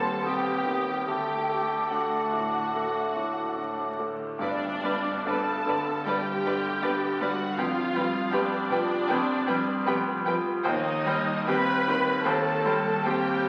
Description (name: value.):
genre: classical, romantic movement for piano and orchestra.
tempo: 67-82 BPM.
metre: 4/4.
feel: rubato.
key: G major.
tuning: A4 = 441 Hz.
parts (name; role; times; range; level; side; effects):
bright studio violin section; melody; 0.0-13.5 s; D5 to B5; -36 LUFS; equal; none.
clear grand piano; melody; 0.0-13.5 s; D2 to G4; -31 LUFS; equal; none.
mellow silver concert flute; second line; 0.0-4.0 s; C6 to Eb6; -35 LUFS; equal; none.
rich studio violin section; second line; 0.0-13.1 s; F#4 to G5; -35 LUFS; equal; none.
rich studio viola section; accompaniment; 0.0-13.5 s; G3 to B4; -34 LUFS; equal; none.
warm bassoon; accompaniment; 0.0-4.0 s; A3 to B3; -35 LUFS; equal; none.
dark French horn section; sustained chords; 0.0-4.1 s; A3 to A4; -42 LUFS; equal; none.
rich symphonic cello section; bass; 0.0-13.5 s; C2 to G2; -46 LUFS; equal; none.
warm studio double bass section; bass; 0.0-13.5 s; F1 to Eb2; -46 LUFS; equal; none.
warm clarinet; second line; 0.2-4.1 s; G4 to A4; -41 LUFS; equal; none.
cymbal swell and tam-tam; percussion; 1.1-7.5 s; none; -47 LUFS; equal; none.
room: wet scoring stage reverb, RT60 1.6 s.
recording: very old 78 rpm record, vinyl crackle.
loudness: -27 LUFS.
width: mono.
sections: 0.0-4.4 A section; 4.4-13.5 A section.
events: band accent 4.4-5.3.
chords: 0.0 Cm; 1.1 D; 4.4 G; 7.6 G7/F; 10.6 Cm/Eb.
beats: 0.25 | 1.08 1.91 2.74 3.57 | 4.40 5.27 6.07 6.84 | 7.58 8.32 9.10 9.87 | 10.64 11.47 12.24 13.04.